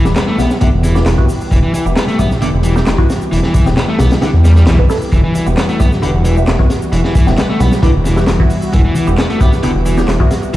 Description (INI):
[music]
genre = breakbeat, breaks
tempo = 133 BPM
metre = 4/4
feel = straight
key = E minor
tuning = A4 = 440 Hz
[part]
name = lush unison pad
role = sustained chords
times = 0.0-10.6 s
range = E3 to G4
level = -21 LUFS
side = equal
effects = chorus, phaser, sidechain pumping
[part]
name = overdriven electric guitar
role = riff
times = 0.0-10.6 s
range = D3 to B3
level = -19 LUFS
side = equal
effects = vintage 12-bit sampler grit, tape echo
[part]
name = filtered dub chord stab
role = stabs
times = 0.0-10.3 s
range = B3 to B4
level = -21 LUFS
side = left 1 dB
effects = phaser, wide subtle chorus, tape echo
[part]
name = dark detuned saw bass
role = bass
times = 0.1-10.6 s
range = E1 to E2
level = -13 LUFS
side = equal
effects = none
[part]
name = crunchy breakbeat drum kit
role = drums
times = 0.1-10.6 s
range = hi-hat, kick drum, snare drum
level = -14 LUFS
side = equal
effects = none
[part]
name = electronic shaker and handclaps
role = drums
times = 0.1-10.6 s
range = none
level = -28 LUFS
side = equal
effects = none
[sound]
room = light reverb, small room ambience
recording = played on a big sound system in a bare room, large studio reverb, vinyl crackle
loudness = -10 LUFS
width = side -15 dB against mid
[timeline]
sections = 0.0-10.6 A section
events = none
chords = 0.0 Em